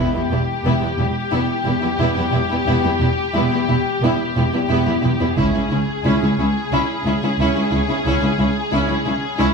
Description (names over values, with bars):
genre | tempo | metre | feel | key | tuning
cinematic, epic orchestral film score | 89 BPM | 4/4 | straight | E dorian | A4 = 440 Hz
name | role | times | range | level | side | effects
warm symphonic violin section | melody | 0.0-9.5 s | G4 to G#4 | -24 LUFS | left 5 dB | none
rich studio violin section | second line | 0.0-9.5 s | E4 | -24 LUFS | equal | none
clear studio viola section | accompaniment | 0.0-9.5 s | B3 to C#4 | -24 LUFS | left 1 dB | none
rich studio double bass section | bass | 0.0-9.5 s | E1 to C#2 | -23 LUFS | right 3 dB | none
rich symphonic cello section | bass | 0.0-9.5 s | C#2 to E2 | -22 LUFS | right 1 dB | none
taiko ensemble | drums | 5.4-6.7 s | none | -28 LUFS | left 1 dB | none
room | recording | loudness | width
moderate scoring stage reverb, RT60 1.8 s | studio ambience | -16 LUFS | side -5 dB against mid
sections
0.0-9.5 A section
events
build-up 0.0-9.5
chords
0.0 Em; 5.4 C#m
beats
0.65 1.33 2.00 | 2.67 3.35 4.03 4.70 | 5.38 6.05 6.72 7.39 | 8.06 8.73 9.40